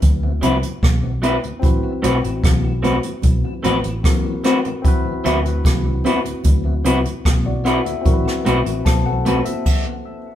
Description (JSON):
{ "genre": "lovers rock reggae", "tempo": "75 BPM", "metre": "4/4", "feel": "straight", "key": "A dorian", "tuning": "A4 = 440 Hz", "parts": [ { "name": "barky tine electric piano", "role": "accompaniment", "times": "0.0-9.8 s", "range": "C4 to A5", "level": "-26 LUFS", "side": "left 3 dB", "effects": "phaser, tape echo" }, { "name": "vintage muted fingered electric bass", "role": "bass", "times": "0.0-9.4 s", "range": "A1 to D2", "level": "-22 LUFS", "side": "equal", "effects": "none" }, { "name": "jazz brush drum kit", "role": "drums", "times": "0.0-9.9 s", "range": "crash cymbal, hi-hat, kick drum, rim click", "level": "-18 LUFS", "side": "equal", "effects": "none" }, { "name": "congas", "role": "percussion", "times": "0.0-9.7 s", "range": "none", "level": "-32 LUFS", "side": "right 4 dB", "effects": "none" }, { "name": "mellow tonewheel organ", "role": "accompaniment", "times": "0.2-9.6 s", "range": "D2 to F#4", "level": "-30 LUFS", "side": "left 4 dB", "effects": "slow rotary speaker, tape echo" }, { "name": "electric guitar through a small old amp", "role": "stabs", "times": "0.4-9.4 s", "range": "F#3 to B4", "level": "-19 LUFS", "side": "equal", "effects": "none" } ], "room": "moderate studio reverb, RT60 0.8 s", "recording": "band playing live in one room, faint mains hum", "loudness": "-16 LUFS", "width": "side -11 dB against mid", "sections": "0.0-10.3 A section", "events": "stop 9.7-10.3", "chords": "0.0 D13; 1.6 Am69; 4.8 D13; 8.1 Am69; 9.7 N.C." }